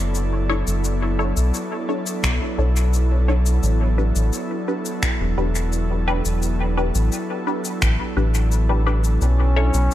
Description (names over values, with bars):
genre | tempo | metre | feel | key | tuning
ambient dub | 86 BPM | 4/4 | straight | unclear | A4 = 439 Hz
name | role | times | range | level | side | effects
airy breathy pad | sustained chords | 0.0-9.9 s | F#3 to D5 | -26 LUFS | right 1 dB | chorus
round analog bass | bass | 0.0-9.9 s | E1 to B1 | -19 LUFS | equal | tube saturation
electronic shaker and finger snaps | drums | 0.1-9.9 s | none | -28 LUFS | left 2 dB | overdrive, dub echo
filtered dub chord stab | stabs | 0.5-9.7 s | D4 to C#5 | -28 LUFS | left 2 dB | phaser, dub echo
electronic kick drum | drums | 2.2-8.0 s | none | -26 LUFS | equal | none
clear trombone | melody | 9.2-9.9 s | C#4 | -25 LUFS | left 1 dB | dub echo
room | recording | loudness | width
digital ambience | none | -18 LUFS | side -13 dB against mid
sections
0.0-9.9 A section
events
none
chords
0.0 Bm11; 3.6 A9sus4; 9.2 Bm11